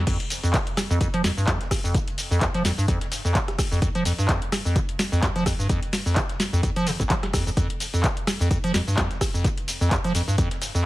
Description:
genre	acid house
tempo	128 BPM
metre	4/4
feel	swing 56% on 16ths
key	unclear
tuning	A4 = 440 Hz
part	acid bass, square	riff	0.0-10.9 s	F2 to F3	-24 LUFS	equal	lush chorus, cassette tape, sidechain pumping, tape echo
part	booming analog drum machine	drums	0.1-10.8 s	crash cymbal, handclaps, hi-hat, rim click, shaker, snare drum	-27 LUFS	equal	studio reverb
part	dusty soul sampler-style drum kit	drums	0.1-10.8 s	hi-hat, snare drum	-39 LUFS	equal	none
part	electronic kick drum	drums	0.1-10.5 s	none	-26 LUFS	equal	overdrive, studio reverb
room	light reverb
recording	heavily compressed radio sound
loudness	-21 LUFS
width	side -18 dB against mid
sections	0.1-10.9 A section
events	drop 0.1-10.9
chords	none

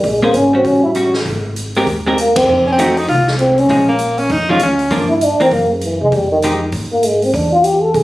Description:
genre	jazz, small-group swing and bop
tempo	197 BPM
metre	4/4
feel	swing 62% on 8ths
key	F minor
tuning	A4 = 440 Hz
part	trombone with cup mute	melody	0.0-8.0 s	Db3 to A4	-12 LUFS	equal	none
part	upright bass	bass	0.0-8.0 s	Ab1 to C3	-22 LUFS	equal	none
part	swinging big-band drum kit	drums	0.0-8.0 s	hi-hat, kick drum, ride cymbal, snare drum	-25 LUFS	equal	none
part	vintage hollow-body jazz guitar	accompaniment	0.2-6.6 s	E3 to C5	-16 LUFS	equal	none
part	clear alto saxophone	second line	2.7-5.0 s	Bb3 to F4	-14 LUFS	equal	none
room	light reverb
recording	recorded on a phone in the room, studio reverb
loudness	-12 LUFS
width	side -17 dB against mid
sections	0.0-8.0 A section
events	band accent 2.3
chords	0.0 Bbm9; 0.6 A6; 1.3 Abmaj9; 2.5 F7b9; 3.7 Bbm7; 4.9 Gm7; 5.5 Gb7; 6.1 Fm9; 7.3 E7(no3)

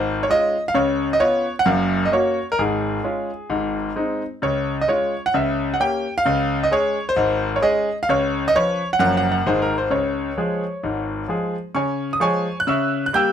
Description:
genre	jazz, stride piano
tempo	131 BPM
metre	4/4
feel	swing 63% on 8ths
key	Db major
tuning	A4 = 440 Hz
part	bright concert grand piano	solo	0.0-13.3 s	Gb1 to G6	-18 LUFS	equal	none
room	light reverb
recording	close, detailed microphones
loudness	-18 LUFS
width	side -9 dB against mid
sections	0.0-11.8 A section; 11.8-13.3 A section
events	none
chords	0.0 Db; 0.7 Db7; 1.7 Gb; 2.6 Db/Ab; 3.5 Ab; 4.4 Db; 5.3 Dbdim7; 6.3 Db5; 8.1 Db7; 9.0 Gbmaj7; 9.5 Ab5; 9.9 Db; 12.7 Dbdim7

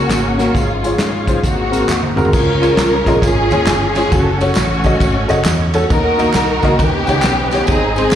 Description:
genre	uptempo gospel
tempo	134 BPM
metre	4/4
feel	swing 64% on 8ths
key	Db major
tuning	A4 = 440 Hz
part	warm studio string section	melody	0.0-8.2 s	Ab3 to Bb4	-17 LUFS	equal	slapback echo
part	warm grand piano	accompaniment	0.0-8.2 s	Ab2 to Eb5	-19 LUFS	left 1 dB	slapback echo
part	bright tonewheel organ	sustained chords	0.0-8.2 s	Ab4 to Eb6	-26 LUFS	right 4 dB	fast rotary speaker, overdrive, chorus vibrato
part	mellow French horn section	sustained chords	0.0-2.3 s	F3 to Gb4	-27 LUFS	left 2 dB	none
part	fingered electric bass	bass	0.0-8.2 s	Gb1 to Ab2	-19 LUFS	equal	none
part	warm soul drum kit	drums	0.1-8.2 s	crash cymbal, hi-hat, kick drum, ride cymbal, snare drum, toms	-19 LUFS	equal	none
part	handclaps and tambourine	percussion	0.1-8.2 s	none	-27 LUFS	right 1 dB	none
room	light reverb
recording	live gig heard through the venue's PA, recital hall reverb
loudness	-12 LUFS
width	side -10 dB against mid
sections	0.0-2.3 A section; 2.3-8.2 B section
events	drum fill 1.9-2.3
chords	0.0 Gb; 0.5 Db/Ab; 1.4 Ab9; 2.3 Db; 4.1 Gbm; 5.9 Ebm; 6.8 Ebaug7

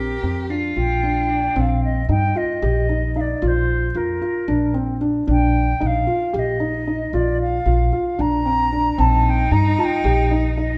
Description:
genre	contemporary instrumental, chamber music in an uneven meter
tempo	226 BPM (eighths)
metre	7/8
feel	straight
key	unclear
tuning	A4 = 442 Hz
part	wooden flute	melody	0.0-10.8 s	Bb4 to Bb5	-26 LUFS	equal	none
part	bright cello	second line	0.0-1.6, 9.0-10.8 s	D4 to G4	-29 LUFS	equal	none
part	felt-muted upright piano	arpeggios	0.0-10.8 s	C4 to G4	-25 LUFS	equal	none
part	upright bass	bass	0.0-10.8 s	Bb1 to G2	-23 LUFS	equal	none
room	moderate recital hall reverb, RT60 1.4 s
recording	none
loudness	-20 LUFS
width	mono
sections	0.0-1.6 A section; 1.6-10.8 B section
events	none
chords	0.0 Bb69; 1.6 Cm7/Bb; 3.4 Bbadd9; 5.3 Ebmaj7sus2/Bb; 9.0 Cm7/Bb

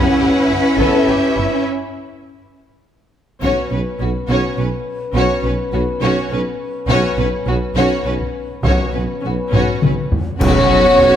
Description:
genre	cinematic, epic orchestral film score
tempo	69 BPM (dotted quarters)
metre	6/8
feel	straight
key	unclear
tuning	A4 = 439 Hz
part	warm symphonic violin section	melody	0.0-11.2 s	F#4 to F#5	-23 LUFS	left 3 dB	none
part	rich symphonic violin section	second line	0.0-11.2 s	B3 to B4	-24 LUFS	left 2 dB	none
part	rich symphonic viola section	accompaniment	0.0-11.2 s	C#3 to A4	-24 LUFS	right 1 dB	none
part	warm French horn section	sustained chords	0.0-11.2 s	C#4 to C#5	-20 LUFS	left 1 dB	none
part	rich symphonic cello section	bass	0.0-11.2 s	B2 to C#4	-20 LUFS	right 1 dB	none
part	rich symphonic double bass section	bass	0.2-11.1 s	G1 to B1	-25 LUFS	right 2 dB	none
part	taiko ensemble	drums	0.8-11.2 s	none	-19 LUFS	left 1 dB	none
part	mellow tuba	bass	3.4-11.1 s	B1	-23 LUFS	right 2 dB	none
part	triangle, clash cymbals and concert bass drum	percussion	3.4-4.5, 10.4-11.2 s	none	-22 LUFS	equal	none
part	hollow concert flute	second line	10.4-11.2 s	C#6	-21 LUFS	left 6 dB	none
part	timpani	percussion	10.4-11.2 s	B2	-23 LUFS	right 4 dB	none
room	moderate scoring stage reverb, RT60 1.9 s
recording	none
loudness	-14 LUFS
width	side -10 dB against mid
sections	0.0-3.4 A section; 3.4-10.4 B section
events	break 1.7-3.4; drum fill 2.5-3.4, 9.5-10.4; band accent 10.4-11.0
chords	0.0 Em/G; 1.7 N.C.; 3.4 Bsus2

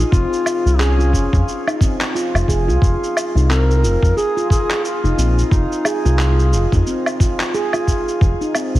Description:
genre	organic downtempo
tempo	89 BPM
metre	4/4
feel	swing 58% on 16ths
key	F minor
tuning	A4 = 441 Hz
part	handpan	arpeggios	0.0-8.7 s	C4 to Ab4	-21 LUFS	right 1 dB	tape echo, shimmer reverb
part	round analog bass	bass	0.0-8.8 s	F1 to F2	-16 LUFS	equal	none
part	electronic shaker, woodblock and handclaps	drums	0.0-8.8 s	none	-24 LUFS	equal	none
part	mellow duduk	melody	0.1-6.5 s	Db4 to Bb4	-24 LUFS	left 2 dB	tape echo, shimmer reverb
part	electronic kick drum	drums	0.1-8.4 s	none	-16 LUFS	equal	none
room	light reverb, digital ambience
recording	heavily compressed radio sound, multiband compression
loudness	-14 LUFS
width	side -16 dB against mid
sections	0.0-8.8 A section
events	none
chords	0.0 F5; 8.2 Ab6 (rootless)

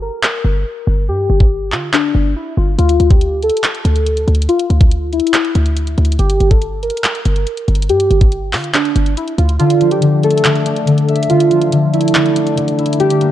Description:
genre	hip hop, trap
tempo	141 BPM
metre	4/4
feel	half-time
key	D minor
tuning	A4 = 440 Hz
part	warbly lo-fi synth keys	melody	0.0-13.3 s	D4 to Bb4	-17 LUFS	right 1 dB	chorus, low-pass filter
part	short 808-style bass	bass	0.0-9.6 s	G1 to D3	-15 LUFS	equal	none
part	trap drum kit	drums	0.2-13.3 s	handclaps, hi-hat, kick drum	-16 LUFS	equal	vintage 12-bit sampler grit
part	concert harp	accompaniment	9.6-13.3 s	D3 to E5	-13 LUFS	left 3 dB	low-pass filter
room	light reverb, digital ambience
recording	dark, warm production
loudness	-12 LUFS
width	side -12 dB against mid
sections	0.0-13.3 A section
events	break 0.0-2.8; filter sweep 0.0-9.6; kick muted 9.6-13.3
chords	0.0 Gm; 2.8 Dsus2; 6.2 Gm; 9.6 Dmadd9

